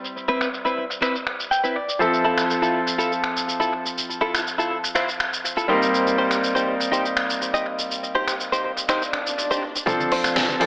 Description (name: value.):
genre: nu-disco, nu disco.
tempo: 122 BPM.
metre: 4/4.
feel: straight.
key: unclear.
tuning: A4 = 438 Hz.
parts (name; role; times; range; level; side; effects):
bright grand piano; accompaniment; 0.0-10.7 s; F3 to B5; -24 LUFS; equal; sidechain pumping, low-pass filter, analog delay.
dusty soul sampler-style drum kit; drums; 0.0-10.7 s; finger snaps, hi-hat, shaker, snare drum; -25 LUFS; equal; high-pass filter on perc, low-pass filter on perc, high-pass filter on snare, low-pass filter on snare, high-pass filter on hats, low-pass filter on hats, analog delay.
direct-recorded clean electric guitar; riff; 0.3-10.5 s; C4 to G5; -24 LUFS; equal; analog chorus, low-pass filter, analog delay.
swell; sound effects; 9.1-9.9 s; none; -30 LUFS; equal; none.
wide unison pluck; arpeggios; 9.9-10.7 s; C3 to A3; -38 LUFS; equal; vintage 12-bit sampler grit, sidechain pumping, dub echo.
electronic kick drum; drums; 9.9-10.5 s; none; -35 LUFS; equal; none.
room: wet spring reverb, RT60 1.6 s, digital ambience.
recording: echo-heavy mix, AM radio sound.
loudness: -20 LUFS.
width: side -28 dB against mid.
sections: 0.0-9.9 A section.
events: filter sweep on grand piano 0.0-9.9; clean electric guitar fill 1.3-2.0; swell 9.1-9.9.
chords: 0.0 Cmaj7; 2.0 Fmaj7; 5.7 Eb6; 9.9 Dm7.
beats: | 0.04 0.53 1.02 1.51 | 2.00 2.50 2.99 3.48 | 3.97 4.46 4.96 5.45 | 5.94 6.43 6.92 7.41 | 7.91 8.40 8.89 9.38 | 9.87 10.37.